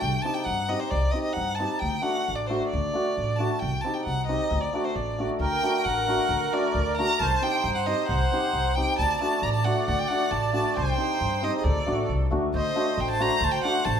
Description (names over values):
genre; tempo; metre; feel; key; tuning
klezmer; 134 BPM; 2/4; straight; D phrygian dominant; A4 = 441 Hz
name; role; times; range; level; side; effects
rich violin; melody; 0.0-14.0 s; C5 to Bb5; -27 LUFS; equal; none
upright bass; bass; 0.0-14.0 s; A1 to G2; -28 LUFS; equal; none
hammered dulcimer; accompaniment; 0.2-13.8 s; A3 to G4; -29 LUFS; left 2 dB; none
accordion; second line; 5.4-14.0 s; G#4 to D5; -30 LUFS; right 4 dB; light tremolo tuning
room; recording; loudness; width
wet large studio reverb, RT60 0.9 s; band playing live in one room; -23 LUFS; side -8 dB against mid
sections
0.0-5.4 A section; 5.4-12.5 A section; 12.5-14.0 B section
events
none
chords
0.0 Cm; 1.8 D; 3.6 Cm; 4.5 D; 7.2 Cm; 9.0 D; 10.8 Cm; 11.7 D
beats
| 0.02 0.47 | 0.92 1.37 | 1.82 2.27 | 2.72 3.17 | 3.62 4.07 | 4.51 4.96 | 5.41 5.86 | 6.31 6.76 | 7.20 7.65 | 8.10 8.54 | 8.99 9.43 | 9.88 10.32 | 10.77 11.21 | 11.65 12.09 | 12.54 12.98 | 13.42 13.86